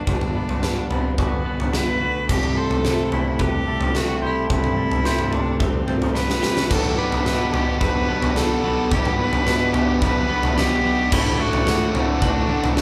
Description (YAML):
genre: post-rock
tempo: 109 BPM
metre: 4/4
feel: straight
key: G major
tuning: A4 = 441 Hz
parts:
  - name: rich cello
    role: melody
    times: 0.0-12.8 s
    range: A3 to B4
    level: -28 LUFS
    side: equal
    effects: none
  - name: warbly tape-like pad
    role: sustained chords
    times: 0.0-12.8 s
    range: A4 to D6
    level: -35 LUFS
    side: equal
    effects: none
  - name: clean electric guitar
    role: arpeggios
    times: 0.0-12.8 s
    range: C4 to E5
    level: -37 LUFS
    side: equal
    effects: none
  - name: twelve-string electric guitar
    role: arpeggios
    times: 0.0-12.8 s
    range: A2 to G4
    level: -33 LUFS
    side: equal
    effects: none
  - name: fuzz fingered electric bass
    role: bass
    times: 0.0-12.8 s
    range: G1 to C3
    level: -29 LUFS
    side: equal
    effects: overdrive
  - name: huge arena drum kit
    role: drums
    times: 0.1-12.8 s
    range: crash cymbal, kick drum, snare drum, toms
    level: -24 LUFS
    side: equal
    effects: none
  - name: thick fuzz guitar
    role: riff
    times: 6.7-12.8 s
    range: A2 to F#4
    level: -26 LUFS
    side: equal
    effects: distortion
room: moderate large studio reverb, RT60 0.8 s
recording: band playing live in one room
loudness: -21 LUFS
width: mono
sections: 0.0-12.8 A section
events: build-up 0.0-12.8; drum fill 6.2-6.7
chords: 0.0 Gmaj7; 2.3 C6; 6.7 Gmaj7/B; 11.1 D/A